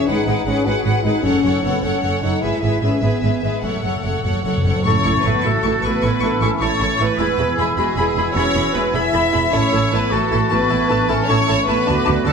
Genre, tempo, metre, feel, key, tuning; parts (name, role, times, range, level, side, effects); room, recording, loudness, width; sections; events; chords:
cinematic, heroic adventure film score; 103 BPM (dotted quarters); 12/8; straight; F# dorian, A major from 4.9 s; A4 = 444 Hz
warm symphonic violin section; melody; 0.0-12.3 s; E5 to C#6; -26 LUFS; left 5 dB
rich symphonic violin section; second line; 0.0-12.3 s; G#4 to E5; -23 LUFS; equal
warm studio viola section; accompaniment; 0.0-12.3 s; D4 to A4; -26 LUFS; equal
dark French horn section; sustained chords; 0.0-12.3 s; G#3 to F#4; -23 LUFS; left 2 dB
rich symphonic cello section; bass; 0.1-12.3 s; E2 to D3; -25 LUFS; right 3 dB
rich symphonic double bass section; bass; 0.1-12.3 s; E1 to D2; -24 LUFS; right 4 dB
timpani; percussion; 1.2-4.8 s; F#2; -25 LUFS; left 1 dB
mellow hollow small flute group; second line; 4.9-12.3 s; C#6 to E6; -25 LUFS; left 6 dB
warm clarinet; second line; 4.9-12.3 s; C#4 to F#4; -28 LUFS; left 1 dB
warm oboe; second line; 4.9-12.3 s; F#5 to B5; -26 LUFS; equal
clear trombone section; sustained chords; 4.9-12.3 s; E3 to B3; -28 LUFS; right 5 dB
wet concert hall reverb, RT60 2.0 s; -15 LUFS; side -6 dB against mid
0.0-4.9 A section; 4.9-12.3 B section
timpani fill 3.6-4.9
0.1 G#m7; 1.2 F#m; 2.4 E/G#; 3.6 F#m; 4.9 A; 7.2 E; 9.5 A